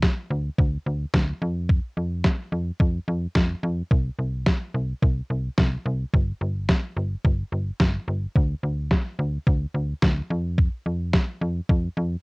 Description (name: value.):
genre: synth-pop.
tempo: 108 BPM.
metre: 4/4.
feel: straight.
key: unclear.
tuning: A4 = 436 Hz.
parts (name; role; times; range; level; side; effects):
slap-like FM bass; bass; 0.0-12.2 s; G1 to F2; -25 LUFS; equal; none.
detuned 8-bit digital drum machine; drums; 0.0-11.8 s; kick drum, snare drum; -20 LUFS; equal; cassette tape.
room: moderate studio reverb, RT60 0.5 s.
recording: home recording on cassette.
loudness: -22 LUFS.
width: side -34 dB against mid.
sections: 0.0-12.2 A section.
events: none.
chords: none.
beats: 0.02 0.58 1.14 | 1.69 2.25 2.80 3.36 | 3.91 4.47 5.02 5.58 | 6.13 6.69 7.25 7.80 | 8.36 8.91 9.47 10.02 | 10.58 11.13 11.69.